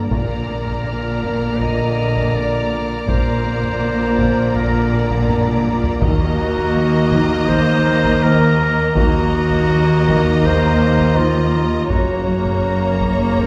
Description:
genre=cinematic, suspense film score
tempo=82 BPM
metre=4/4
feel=straight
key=unclear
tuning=A4 = 440 Hz
part: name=warm studio violin section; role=melody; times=0.0-13.5 s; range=Bb5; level=-30 LUFS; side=equal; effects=none
part: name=warm studio violin section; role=second line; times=0.0-13.5 s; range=C#5 to Eb5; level=-29 LUFS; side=equal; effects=none
part: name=rich studio viola section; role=accompaniment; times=0.0-13.5 s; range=Bb3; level=-26 LUFS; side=equal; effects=none
part: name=mellow French horn section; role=sustained chords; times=0.0-13.5 s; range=C#3 to Bb4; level=-28 LUFS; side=equal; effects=none
part: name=warm studio cello section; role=bass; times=0.0-13.5 s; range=Eb2 to Bb2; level=-26 LUFS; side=equal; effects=none
part: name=warm studio double bass section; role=bass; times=0.0-13.5 s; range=F#1 to Eb2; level=-23 LUFS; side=equal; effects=none
part: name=clear clarinet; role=second line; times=0.1-13.5 s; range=F4 to Eb5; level=-24 LUFS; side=equal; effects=none
part: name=warm studio cello section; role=riff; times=0.1-13.5 s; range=F#2 to Eb4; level=-28 LUFS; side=equal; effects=none
part: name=taiko ensemble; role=drums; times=0.1-13.5 s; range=none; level=-26 LUFS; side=equal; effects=none
part: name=warm studio violin section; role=texture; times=0.1-5.6 s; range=D6 to F6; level=-37 LUFS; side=equal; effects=none
room=wet recital hall reverb, RT60 1.4 s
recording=recorded in a church or concert hall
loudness=-17 LUFS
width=mono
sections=0.0-13.5 A section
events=drum fill 5.3-6.0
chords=0.1 Bb; 6.0 Ebm; 11.9 F#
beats=| 0.12 0.86 1.61 2.35 | 3.09 3.83 4.56 5.29 | 6.02 6.75 7.50 8.23 | 8.96 9.70 10.44 11.18 | 11.91 12.64 13.39

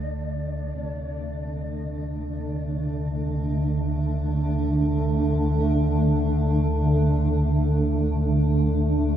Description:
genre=dark ambient drone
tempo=free time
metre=none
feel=none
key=unclear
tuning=A4 = 443 Hz
part: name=granular cloud pad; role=sustained chords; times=0.0-9.2 s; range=D3 to D4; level=-26 LUFS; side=equal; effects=built-in reverb
part: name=deep rumbling drone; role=drone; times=0.0-9.2 s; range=D2 to D3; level=-24 LUFS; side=right 1 dB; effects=built-in reverb
part: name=gamelan-type bossed gongs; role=arpeggios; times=0.8-7.5 s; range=none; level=barely audible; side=none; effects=none
room=wet huge ambient reverb, RT60 7.7 s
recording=none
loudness=-22 LUFS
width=side -10 dB against mid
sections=0.7-9.2 A section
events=none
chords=0.0 D5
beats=free time

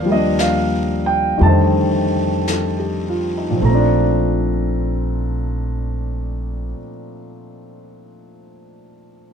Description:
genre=jazz ballad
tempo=50-62 BPM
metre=4/4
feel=swing 67% on 8ths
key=Bb major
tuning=A4 = 441 Hz
part: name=warm concert grand piano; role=accompaniment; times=0.0-9.3 s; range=Bb2 to Bb5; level=-18 LUFS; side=equal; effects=none
part: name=upright bass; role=bass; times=0.0-6.7 s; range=Bb1 to F2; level=-21 LUFS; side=right 1 dB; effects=none
part: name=jazz brush drum kit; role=drums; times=0.4-4.6 s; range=brushed snare drum, hi-hat, snare drum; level=-30 LUFS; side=left 3 dB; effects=none
room=little or no reverb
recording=dark, warm production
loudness=-16 LUFS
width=side -7 dB against mid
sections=0.0-3.6 A section; 3.6-8.4 B section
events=slowing down 0.0-3.6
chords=0.0 Ebmaj9; 1.4 F13; 3.6 Bbmaj9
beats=0.38 1.39 2.46 | 3.62 4.83 6.03 7.23

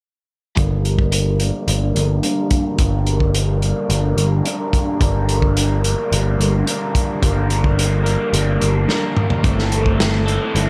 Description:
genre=psychedelic rock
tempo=108 BPM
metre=4/4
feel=straight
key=G dorian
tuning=A4 = 440 Hz
part: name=overdriven electric guitar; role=riff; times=0.6-10.7 s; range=G2 to Bb4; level=-23 LUFS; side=equal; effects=phaser, low-pass filter, dub echo
part: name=overdriven picked electric bass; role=bass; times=0.6-10.7 s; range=G1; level=-20 LUFS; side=equal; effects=none
part: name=crunchy breakbeat drum kit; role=drums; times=0.6-10.7 s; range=hi-hat, kick drum, snare drum, toms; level=-22 LUFS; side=equal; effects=none
room=studio reverb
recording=echo-heavy mix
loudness=-18 LUFS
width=mono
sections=0.6-10.7 A section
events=filter sweep on overdriven electric guitar 0.6-10.7; drum fill 8.9-9.4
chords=0.6 Gm; 9.4 Am7/G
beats=| 0.58 1.13 1.68 2.24 | 2.79 3.35 3.90 4.45 | 5.01 5.56 6.12 6.67 | 7.22 7.78 8.33 8.89 | 9.44 10.00 10.55

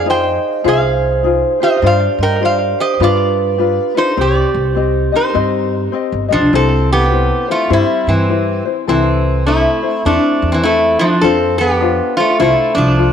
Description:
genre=Hawaiian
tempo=102 BPM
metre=4/4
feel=swing 62% on 8ths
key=C minor, C major from 6.5 s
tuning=A4 = 438 Hz
part: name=metal-body resonator slide guitar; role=melody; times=0.0-13.1 s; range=E3 to G5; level=-15 LUFS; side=right 1 dB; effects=slapback echo
part: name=vibraphone with medium hard mallets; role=second line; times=0.0-5.9 s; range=G4 to Eb5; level=-18 LUFS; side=right 7 dB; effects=none
part: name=ukulele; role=accompaniment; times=0.0-13.1 s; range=C4 to Eb5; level=-18 LUFS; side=left 11 dB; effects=none
part: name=upright bass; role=bass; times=0.0-13.1 s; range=G1 to G2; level=-18 LUFS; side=right 1 dB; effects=none
room=moderate plate reverb, RT60 3.4 s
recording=1960s-style stereo with parts hard left and right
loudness=-12 LUFS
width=side -8 dB against mid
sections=0.0-6.5 A section; 6.5-13.1 B section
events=none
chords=0.0 Fm7; 1.8 G7sus4; 3.0 G7; 4.2 Cm; 6.5 C; 8.9 Am/C; 11.2 F6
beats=0.07 0.65 1.24 | 1.83 2.42 3.00 3.59 | 4.18 4.77 5.36 5.94 | 6.53 7.12 7.71 8.29 | 8.88 9.47 10.05 10.64 | 11.23 11.81 12.40 12.99

